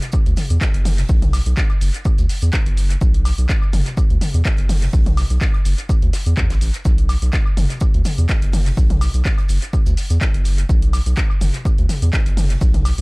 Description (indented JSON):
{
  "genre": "acid house",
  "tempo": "125 BPM",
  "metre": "4/4",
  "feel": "swing 54% on 16ths",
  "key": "B minor",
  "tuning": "A4 = 443 Hz",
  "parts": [
    { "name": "damped 70s drum kit", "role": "drums", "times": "0.0-13.0 s", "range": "hi-hat, shaker, snare drum", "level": "-39 LUFS", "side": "right 1 dB", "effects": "none" },
    { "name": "punchy analog drum machine", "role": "drums", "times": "0.0-13.0 s", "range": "cabasa, handclaps, hi-hat, toms, woodblock", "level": "-26 LUFS", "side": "left 1 dB", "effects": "dub echo" },
    { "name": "electronic kick drum", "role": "drums", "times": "0.1-12.7 s", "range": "none", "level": "-17 LUFS", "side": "equal", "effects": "none" },
    { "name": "round analog bass", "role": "bass", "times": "0.3-13.0 s", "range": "F#1 to E2", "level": "-17 LUFS", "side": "equal", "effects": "sidechain pumping" }
  ],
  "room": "small room ambience",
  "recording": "echo-heavy mix",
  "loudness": "-15 LUFS",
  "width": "side -29 dB against mid",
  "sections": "0.0-13.0 A section",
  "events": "none",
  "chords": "none"
}